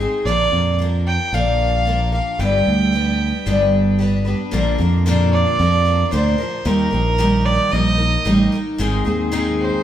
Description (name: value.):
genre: folk rock and heartland rock.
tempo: 113 BPM.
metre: 4/4.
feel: straight.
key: unclear.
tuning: A4 = 440 Hz.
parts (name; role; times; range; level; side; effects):
picked twelve-string acoustic guitar; accompaniment; 0.0-9.8 s; G2 to B4; -19 LUFS; left 1 dB; none.
modern bright fingered electric bass; bass; 0.0-9.7 s; G1 to F2; -19 LUFS; equal; none.
rich fiddle; melody; 0.3-9.8 s; Bb4 to G5; -21 LUFS; right 3 dB; none.
room: moderate large studio reverb, RT60 0.9 s.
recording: band playing live in one room.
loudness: -15 LUFS.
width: side -11 dB against mid.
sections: 0.0-4.5 A section; 4.5-9.8 B section.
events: none.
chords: 0.3 Bb; 2.4 G; 4.5 Bb; 6.7 Eb; 8.8 Ab.